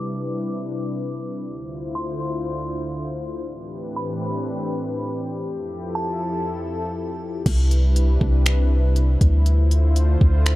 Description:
hip hop, atmospheric cloud-rap; 120 BPM; 4/4; half-time; C major; A4 = 440 Hz
glassy synth bell; melody; 0.0-6.9 s; A5 to D6; -34 LUFS; right 1 dB; chorus, digital delay
warm analog pad; sustained chords; 0.0-10.6 s; D2 to C5; -26 LUFS; left 1 dB; chorus, sidechain pumping
long sustained 808-style bass; bass; 7.5-10.6 s; C2 to D2; -16 LUFS; equal
smooth R&B drum kit; drums; 7.5-10.6 s; crash cymbal, finger snaps, hi-hat, kick drum; -20 LUFS; equal; overdrive
little or no reverb; dark, warm production, low-pass filter; -20 LUFS; side -17 dB against mid
0.0-7.5 A section; 7.5-10.6 B section
filter sweep 0.0-7.5
0.0 Cmaj9; 1.5 Dm9; 3.5 Am11; 5.5 Fmaj7; 7.5 Cmaj9; 9.5 Dm9
0.46 0.96 | 1.46 1.96 2.46 2.96 | 3.46 3.96 4.46 4.96 | 5.46 5.96 6.46 6.96 | 7.46 7.96 8.46 8.96 | 9.46 9.96 10.46

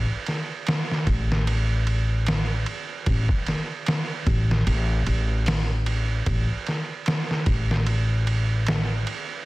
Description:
trip hop; 75 BPM; 4/4; swing 57% on 16ths; A4 = 440 Hz
upright bass; bass; 0.0-9.0 s; A1; -22 LUFS; equal
trip hop sampler-style drum kit; drums; 0.3-9.3 s; hi-hat, kick drum, ride cymbal, snare drum; -25 LUFS; right 1 dB
little or no reverb; dense, heavily limited modern master, vinyl crackle; -22 LUFS; side -20 dB against mid
0.0-9.5 A section
0.66 1.46 2.26 | 3.06 3.86 4.66 5.46 | 6.26 7.06 7.86 8.66

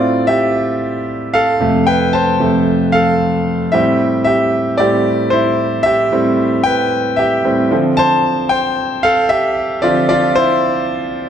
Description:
pop; 113 BPM; 4/4; straight; A minor; A4 = 440 Hz
clear concert grand piano; solo; 0.0-11.3 s; F2 to A5; -12 LUFS; equal
wet recital hall reverb, RT60 1.3 s; -12 LUFS; side -8 dB against mid
0.0-3.7 A section; 3.7-11.3 B section
grand piano solo 0.0-3.7, 3.7-11.3
0.0 Am; 1.6 F; 3.7 Am7; 7.7 Dm7
0.02 0.55 1.08 | 1.61 2.14 2.67 3.20 | 3.73 4.26 4.79 5.33 | 5.86 6.39 6.92 7.45 | 7.98 8.51 9.04 9.57 | 10.10 10.63 11.16

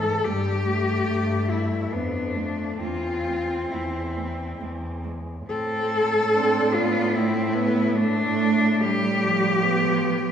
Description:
classical, lyrical piece for cello ensemble; 65-76 BPM; 3/4; rubato; A minor; A4 = 442 Hz
clear cello; melody; 0.0-10.3 s; D4 to A4; -24 LUFS; left 2 dB
rich cello; accompaniment; 0.0-10.3 s; E3 to D4; -29 LUFS; left 1 dB
rich cello; bass; 0.0-10.3 s; E2 to A2; -28 LUFS; equal
rich cello; second line; 0.2-10.3 s; F3 to C4; -28 LUFS; right 8 dB
wet concert hall reverb, RT60 1.8 s; recorded in a church or concert hall; -21 LUFS; side -8 dB against mid
0.0-5.5 A section; 5.5-10.3 B section
0.3 Emadd11/G; 1.9 Dm/F; 2.8 Am/E (rootless); 5.5 Am; 7.9 G/A
| 0.25 1.08 1.92 | 2.80 3.72 4.60 | 5.48 6.33 7.14 | 7.94 8.81 9.62

